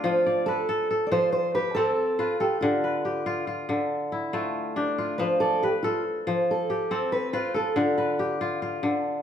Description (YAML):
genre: west african traditional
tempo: 93 BPM (dotted quarters)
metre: 12/8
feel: straight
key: F lydian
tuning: A4 = 440 Hz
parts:
  - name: kora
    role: arpeggios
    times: 0.0-9.2 s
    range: D3 to D5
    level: -25 LUFS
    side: left 1 dB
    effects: none
  - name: fingerpicked steel-string acoustic guitar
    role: melody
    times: 0.1-8.4 s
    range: F4 to D5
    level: -26 LUFS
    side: right 2 dB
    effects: none
room: wet large studio reverb, RT60 1.2 s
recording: band playing live in one room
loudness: -23 LUFS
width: side -9 dB against mid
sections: 0.0-5.2 A section; 5.2-9.2 B section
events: steel-string acoustic guitar solo 5.2-9.2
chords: 0.0 F; 2.6 Dm; 5.2 F; 7.8 Dm